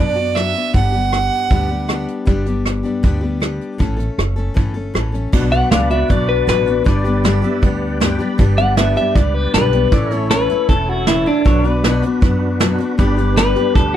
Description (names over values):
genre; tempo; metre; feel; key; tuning
honky-tonk and classic country; 157 BPM; 4/4; straight; unclear; A4 = 440 Hz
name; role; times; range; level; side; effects
clear fiddle; second line; 0.0-2.0 s; D5 to F#5; -19 LUFS; right 6 dB; none
picked steel-string acoustic guitar; accompaniment; 0.0-14.0 s; G2 to A4; -21 LUFS; left 4 dB; none
upright bass; bass; 0.0-14.0 s; E1 to F#2; -20 LUFS; equal; none
soft brush drum kit; drums; 0.4-13.8 s; crash cymbal, hi-hat, kick drum, rim click, snare drum; -16 LUFS; right 1 dB; none
tonewheel organ; accompaniment; 5.3-14.0 s; D4 to B5; -26 LUFS; right 4 dB; slow rotary speaker, overdrive, chorus vibrato
clean electric guitar; melody; 5.5-14.0 s; D4 to F#5; -17 LUFS; left 2 dB; none
pedal steel guitar; sustained chords; 5.7-14.0 s; A4 to D5; -28 LUFS; left 2 dB; wide subtle chorus
room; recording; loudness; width
little or no reverb; none; -14 LUFS; side -11 dB against mid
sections
0.0-5.3 A section; 5.3-14.0 B section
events
fiddle solo 0.0-5.3; clean electric guitar solo 5.3-14.0; tonewheel organ fill 7.2-8.4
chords
0.0 Bm; 0.7 G; 3.8 A; 5.3 Bm; 6.9 G; 9.9 A; 11.5 Bm; 13.0 G